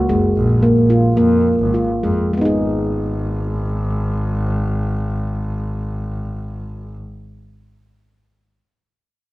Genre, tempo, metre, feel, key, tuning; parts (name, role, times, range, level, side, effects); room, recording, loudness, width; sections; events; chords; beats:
contemporary instrumental, chamber music in an uneven meter; 196-230 BPM (eighths); 7/8; straight; G# dorian; A4 = 441 Hz
handpan; arpeggios; 0.0-7.1 s; G#3 to G#4; -16 LUFS; equal
bright double bass; bass; 0.1-7.0 s; F#1 to E#2; -20 LUFS; equal
light reverb; close, detailed microphones; -16 LUFS; side -18 dB against mid
0.0-2.3 A section; 2.3-6.6 B section
slowing down 0.0-2.3
0.4 A#5; 2.3 G#m
0.09 | 0.36 0.62 0.90 1.17 1.46 1.74 2.04 | 2.34 2.65 2.95 3.26 3.56 3.87 4.17 | 4.48 4.78 5.09 5.39 5.70 6.00 6.31